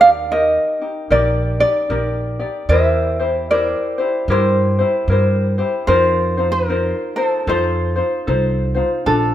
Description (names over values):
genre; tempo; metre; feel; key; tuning
Hawaiian; 75 BPM; 4/4; swing 61% on 8ths; unclear; A4 = 440 Hz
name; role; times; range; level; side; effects
ukulele; melody; 0.0-9.3 s; A4 to F5; -18 LUFS; right 2 dB; none
ukulele; accompaniment; 0.0-9.3 s; D4 to D5; -19 LUFS; left 2 dB; none
upright bass; bass; 0.0-9.3 s; Bb1 to G2; -20 LUFS; right 1 dB; none
room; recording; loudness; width
moderate recital hall reverb, RT60 1.6 s; none; -15 LUFS; side -12 dB against mid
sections
0.0-9.3 A section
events
none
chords
0.0 Ebmaj7; 2.7 C7/E; 5.9 F7sus4; 7.5 F7